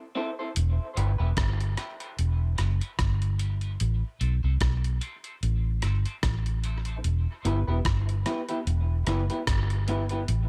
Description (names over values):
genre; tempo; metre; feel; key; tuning
dub reggae; 74 BPM; 4/4; swing 56% on 16ths; E minor; A4 = 440 Hz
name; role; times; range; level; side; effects
electric guitar at the edge of break-up; accompaniment; 0.2-10.2 s; B3 to C5; -37 LUFS; equal; subtle chorus, high-pass filter, dub echo
vintage muted fingered electric bass; bass; 0.6-10.5 s; E1 to C2; -28 LUFS; equal; none
dusty soul sampler-style drum kit; drums; 0.6-10.5 s; hi-hat, kick drum, rim click; -33 LUFS; equal; none
room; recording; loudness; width
little or no reverb; none; -27 LUFS; mono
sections
0.6-10.5 A section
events
break 0.0-0.6; filter sweep on clean electric guitar 0.0-7.0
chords
0.0 Am; 0.6 Em; 3.8 Am; 7.0 Em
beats
| 0.56 1.37 2.18 2.99 | 3.80 4.61 5.42 6.23 | 7.04 7.85 8.66 9.47 | 10.28